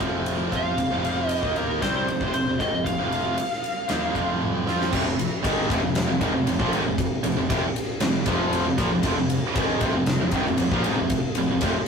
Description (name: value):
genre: hard rock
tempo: 116 BPM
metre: 4/4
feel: straight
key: F minor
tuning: A4 = 440 Hz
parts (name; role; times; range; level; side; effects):
- heavy high-gain guitar; riff; 0.0-11.7 s; F2 to F4; -26 LUFS; right 4 dB; distortion
- tight distorted guitar; riff; 0.0-11.7 s; F2 to F4; -29 LUFS; left 6 dB; distortion
- fuzz fingered electric bass; bass; 0.0-11.7 s; F1 to F2; -32 LUFS; left 1 dB; overdrive
- huge arena drum kit; drums; 0.0-11.7 s; crash cymbal, kick drum, ride cymbal, snare drum, toms; -26 LUFS; equal; none
- high-gain lead guitar; melody; 0.6-4.4 s; Bb4 to F5; -28 LUFS; equal; distortion
- distorted electric guitar; riff; 4.9-11.7 s; F2 to Ab3; -31 LUFS; left 1 dB; overdrive
room: moderate studio reverb, RT60 0.6 s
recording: rough rehearsal-room recording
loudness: -21 LUFS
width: side -6 dB against mid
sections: 0.0-4.9 A section; 4.9-11.9 B section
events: drum fill 4.4-4.9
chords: 0.0 F5; 4.9 Fm